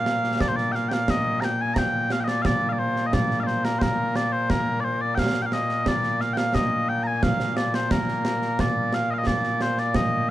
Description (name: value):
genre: scottish traditional, Scottish pipe music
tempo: 88 BPM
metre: 2/4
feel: straight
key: Bb major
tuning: A4 = 440 Hz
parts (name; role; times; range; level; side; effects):
- mellow small bagpipes; melody; 0.0-10.3 s; Bb2 to Bb5; -23 LUFS; equal; none
- concert snare drum and concert bass drum; drums; 0.1-10.1 s; none; -26 LUFS; right 1 dB; none
room: little or no reverb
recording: dark, warm production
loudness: -21 LUFS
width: side -14 dB against mid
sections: 0.0-8.6 A section; 8.6-10.3 B section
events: none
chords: none